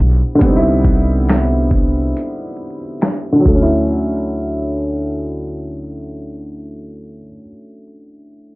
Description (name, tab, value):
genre	lo-fi hip hop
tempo	69 BPM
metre	4/4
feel	swing 60% on 16ths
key	D major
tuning	A4 = 440 Hz
part	warm upright piano	accompaniment	0.0-8.6 s	D3 to E4	-17 LUFS	equal	cassette tape, low-pass filter
part	upright bass	bass	0.0-7.3 s	B1 to D2	-19 LUFS	equal	none
part	dusty soul sampler-style drum kit	drums	0.4-3.7 s	finger snaps, hi-hat, kick drum, snare drum	-16 LUFS	equal	none
room	light reverb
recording	vinyl crackle, low-pass filter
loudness	-13 LUFS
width	side -22 dB against mid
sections	0.0-3.9 A section; 3.9-7.4 B section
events	none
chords	0.0 Cmaj9; 3.5 Dmaj9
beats	| 0.41 1.28 2.15 3.02 | 3.89 4.76 5.63 6.50